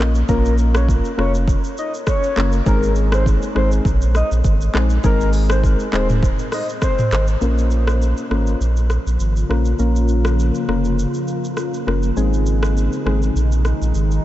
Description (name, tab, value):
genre	afrobeats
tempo	101 BPM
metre	4/4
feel	swing 55% on 16ths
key	Bb minor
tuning	A4 = 441 Hz
part	soft electric-piano-like synth keys	accompaniment	0.0-13.3 s	Ab3 to Bb4	-23 LUFS	left 3 dB	chorus, low-pass filter
part	warm sub bass	bass	0.0-14.2 s	Eb1 to Bb1	-17 LUFS	equal	none
part	afro-pop drum kit	drums	0.0-14.2 s	handclaps, hi-hat, kick drum, rim click, shaker, toms	-23 LUFS	equal	none
part	soft octave-layered synth lead	melody	0.3-7.3 s	Bb4 to Eb5	-25 LUFS	left 1 dB	chorus, diffuse ambient delay
part	deep dark ambient pad	sustained chords	8.8-14.2 s	C3 to F4	-24 LUFS	left 1 dB	chorus, built-in reverb, low-pass filter
room	light reverb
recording	nothing above 8.0 kHz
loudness	-15 LUFS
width	side -14 dB against mid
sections	0.0-7.4 A section; 7.4-14.2 B section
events	filter sweep 7.4-14.2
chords	0.0 Bbm; 2.7 Ab; 7.4 Bbm; 12.2 Ab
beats	| 0.29 0.88 1.48 2.07 | 2.66 3.26 3.85 4.45 | 5.04 5.63 6.23 6.82 | 7.42 8.01 8.60 9.20 | 9.79 10.39 10.98 11.57 | 12.17 12.76 13.36 13.95